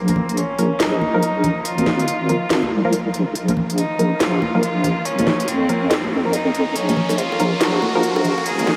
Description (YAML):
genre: deep dubstep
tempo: 141 BPM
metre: 4/4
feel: swing 62% on 16ths, half-time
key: Bb minor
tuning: A4 = 440 Hz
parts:
  - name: bright cello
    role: melody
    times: 0.0-8.8 s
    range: Bb3 to Ab4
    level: -26 LUFS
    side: equal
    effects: low-pass filter, dub echo
  - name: deep soft wobble bass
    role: bass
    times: 0.0-8.8 s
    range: Ab1 to F2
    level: -23 LUFS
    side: equal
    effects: chorus, high-pass filter
  - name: riser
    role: sound effects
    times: 0.0-8.8 s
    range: none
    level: -36 LUFS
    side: equal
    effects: none
  - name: garage drum kit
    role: drums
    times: 0.1-8.8 s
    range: hi-hat, snare drum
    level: -26 LUFS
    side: equal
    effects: none
  - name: congas and bongos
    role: percussion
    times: 0.1-8.8 s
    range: none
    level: -28 LUFS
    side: equal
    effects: dub echo
  - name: filtered dub chord stab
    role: stabs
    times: 0.6-8.0 s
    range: F3 to Bb4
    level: -27 LUFS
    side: equal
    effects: chorus, dub echo
room: wet huge ambient reverb, RT60 7.3 s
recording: dreamy mix soaked in reverb, high-pass filter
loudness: -19 LUFS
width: mono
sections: 0.0-8.8 A section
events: build-up 0.0-8.8; riser 0.0-8.8; filter sweep 0.0-8.8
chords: 0.0 Bb5